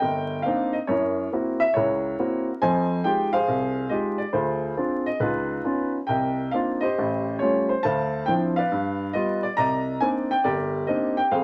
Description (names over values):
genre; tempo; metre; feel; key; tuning
solo jazz; 138 BPM; 4/4; swing 68% on 8ths, rubato; C minor; A4 = 441 Hz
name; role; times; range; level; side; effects
warm upright piano; solo; 0.0-11.4 s; G1 to Bb5; -24 LUFS; equal; none
room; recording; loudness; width
wet studio reverb, RT60 0.6 s; vinyl crackle; -24 LUFS; mono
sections
0.0-11.4 A section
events
none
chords
0.0 Cm9; 0.9 F#7#11; 2.6 Fm9; 4.3 Dm7b5; 5.2 Db9; 6.1 Cm11; 7.0 A7alt; 7.8 Dm9; 8.7 G7; 9.6 Cm9